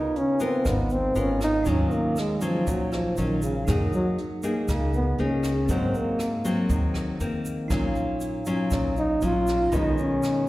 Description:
bossa nova; 119 BPM; 4/4; straight; Eb minor; A4 = 436 Hz
dark trombone; melody; 0.0-10.5 s; Db3 to F4; -25 LUFS; equal; plate reverb
bell-like tine electric piano; accompaniment; 0.0-10.5 s; C4 to Gb5; -36 LUFS; right 4 dB; plate reverb, slapback echo
nylon-string guitar; accompaniment; 0.0-10.5 s; Ab2 to Bb4; -27 LUFS; left 2 dB; slapback echo
jazz brush drum kit; drums; 0.2-10.3 s; hi-hat, kick drum, rim click; -32 LUFS; equal
tube shaker; percussion; 0.4-10.5 s; -46 LUFS; right 3 dB
upright bass; bass; 0.7-10.0 s; Ab1 to Ab2; -28 LUFS; equal
moderate club reverb, RT60 0.7 s; live gig heard through the venue's PA, recital hall reverb; -22 LUFS; side -17 dB against mid
0.0-10.5 A section
trombone solo 0.0-10.5
0.0 Db13; 1.7 Ebm9; 3.7 Gb69; 5.7 Ab9; 7.7 Ebm9/Bb; 9.7 B69
0.14 0.64 1.15 | 1.65 2.16 2.66 3.17 | 3.67 4.18 4.68 5.18 | 5.69 6.19 6.70 7.20 | 7.71 8.21 8.72 9.22 | 9.72 10.23

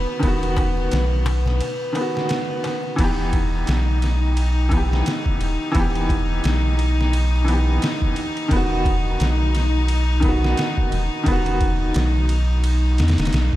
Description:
trip hop; 87 BPM; 4/4; swing 58% on 16ths; E harmonic minor; A4 = 441 Hz
bright upright piano; accompaniment; 0.0-13.6 s; D#3 to G4; -25 LUFS; equal; tremolo, tape echo
bright chamber string section; sustained chords; 0.0-13.6 s; B3 to D#4; -27 LUFS; left 2 dB
round analog bass; bass; 0.0-13.5 s; E1 to E2; -20 LUFS; equal
darbuka; percussion; 0.1-3.0 s; -33 LUFS; left 2 dB
trip hop sampler-style drum kit; drums; 0.2-13.6 s; crash cymbal, kick drum, ride cymbal, snare drum; -24 LUFS; equal
light reverb, small room ambience; -18 LUFS; side -15 dB against mid
0.0-3.0 A section; 3.0-13.6 B section
break 1.6-3.0
0.0 B/E; 3.0 Em; 8.5 B/E
| 0.23 0.92 1.61 2.30 | 2.99 3.68 4.37 5.05 | 5.75 6.43 7.12 7.81 | 8.50 9.19 9.88 10.57 | 11.26 11.95 12.64 13.33

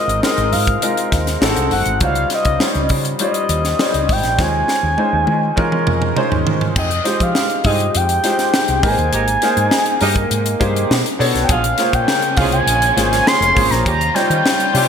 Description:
polished 1980s jazz-funk pop; 101 BPM; 4/4; straight; Ab major; A4 = 440 Hz
expressive portamento lead; melody; 0.0-14.9 s; Eb5 to C6; -18 LUFS; equal; chorus, ping-pong delay
warm grand piano; accompaniment; 0.0-14.9 s; G3 to Eb5; -20 LUFS; equal; analog chorus
woody fretless electric bass; bass; 0.1-14.9 s; F1 to F3; -20 LUFS; equal
crisp fusion drum kit; drums; 0.1-14.9 s; crash cymbal, hi-hat, kick drum, snare drum, toms; -20 LUFS; left 1 dB; gated reverb
mellow horn section; second line; 6.8-14.9 s; G3 to Bb4; -27 LUFS; right 1 dB
warm studio string section; sustained chords; 11.5-14.9 s; Db3 to C5; -25 LUFS; left 1 dB
moderate lush hall reverb, RT60 2.1 s; bright 1980s-style digital production; -14 LUFS; side -7 dB against mid
0.0-6.8 A section; 6.8-14.9 B section
drum fill 4.4-6.8
0.0 Ab69; 1.4 Ab7b9; 2.0 Dbmaj9#11; 4.4 Eb13sus4; 6.8 Fm9; 8.8 Abmaj9; 10.9 Bm9; 11.5 Bbm9; 13.9 Eb13
0.24 0.83 1.42 | 2.02 2.61 3.21 3.80 | 4.39 4.98 5.58 6.17 | 6.76 7.35 7.95 8.54 | 9.13 9.72 10.31 10.90 | 11.49 12.09 12.68 13.27 | 13.86 14.45

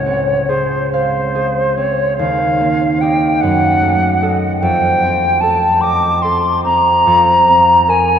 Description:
classical, impressionist duo for flute and harp; 46-51 BPM (dotted quarters); 6/8; rubato; A4 = 440 Hz
silver concert flute; melody; 0.0-8.2 s; B#4 to D6; -13 LUFS; left 1 dB
concert harp; accompaniment; 0.0-8.2 s; C#2 to E#5; -17 LUFS; right 2 dB
wet cathedral reverb, RT60 5.5 s; nothing above 11.0 kHz; -11 LUFS; side -8 dB against mid
0.0-8.2 A section
0.0 C#maj7; 2.2 D#add9; 3.4 F#m6; 4.6 F9; 7.1 Ab69/F
0.92 | 2.18 3.42 | 4.62 5.83 | 7.07

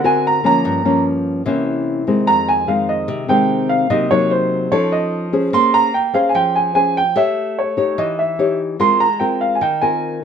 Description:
bossa nova; 147 BPM; 4/4; straight; F minor; A4 = 438 Hz
warm baby grand piano; melody; 0.0-10.2 s; C5 to C6; -16 LUFS; right 2 dB
nylon-string guitar; accompaniment; 0.0-10.2 s; F2 to C#5; -18 LUFS; left 2 dB
moderate studio reverb, RT60 0.5 s; minimal, uncompressed stereo recording; -14 LUFS; side -7 dB against mid
0.0-2.3 A section; 2.3-10.2 B section
grand piano solo 0.0-2.3
0.0 D7alt; 0.6 Gm7b5; 1.5 C7b9; 2.3 Fm7; 3.9 Cm7b5; 4.7 F7b13; 5.5 Bbm9; 7.2 A7#11; 8.8 Ab69
0.24 | 0.65 1.05 1.46 1.86 | 2.27 2.68 3.09 3.49 | 3.90 4.31 4.72 5.12 | 5.53 5.94 6.35 6.75 | 7.16 7.57 7.98 8.38 | 8.79 9.20 9.61 10.01

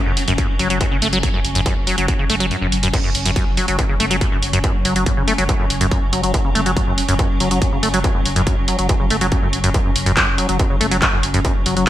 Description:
driving peak-time techno; 141 BPM; 4/4; straight; A4 = 440 Hz
swarming drone; drone; 0.0-11.9 s; F#3 to C#4; -25 LUFS; left 1 dB; built-in reverb, sidechain pumping
acid bass, saw; riff; 0.1-11.9 s; F#2 to A3; -20 LUFS; equal; analog chorus, sidechain pumping, digital delay
saturated sub bass; bass; 0.1-11.9 s; F#1; -25 LUFS; equal; sidechain pumping, low-pass filter
techno drum kit; drums; 0.2-11.9 s; crash cymbal, handclaps, hi-hat; -22 LUFS; right 1 dB; sidechain pumping on hats, sidechain pumping on cymbals, gated reverb
electronic kick drum; drums; 0.4-11.5 s; -20 LUFS; equal; distortion
light reverb, digital ambience; bright 1980s-style digital production; -15 LUFS; side -13 dB against mid
0.0-11.9 A section
filter sweep on acid bass 0.0-11.9; kick drops out 2.5-2.9
0.0 F#5
0.38 0.81 | 1.23 1.66 2.08 2.51 | 2.94 3.36 3.79 4.21 | 4.64 5.06 5.49 5.91 | 6.34 6.76 7.19 7.62 | 8.04 8.47 8.89 9.32 | 9.74 10.17 10.60 11.02 | 11.45 11.87

